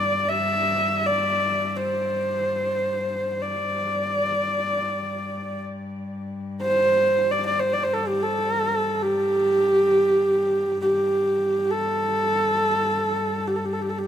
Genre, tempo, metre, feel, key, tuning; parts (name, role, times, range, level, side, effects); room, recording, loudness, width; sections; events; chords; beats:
mongolian traditional, Mongolian folk; free time; G zhi mode; A4 = 440 Hz
warm horsehead fiddle; melody; 0.0-14.1 s; G4 to E5; -21 LUFS; right 1 dB
warm cello; drone; 0.0-14.1 s; G2; -32 LUFS; left 3 dB
moderate huge ambient reverb, RT60 4.7 s; minimal, uncompressed stereo recording; -20 LUFS; side -10 dB against mid
0.0-14.1 A section
slowing down 10.7-14.1
free time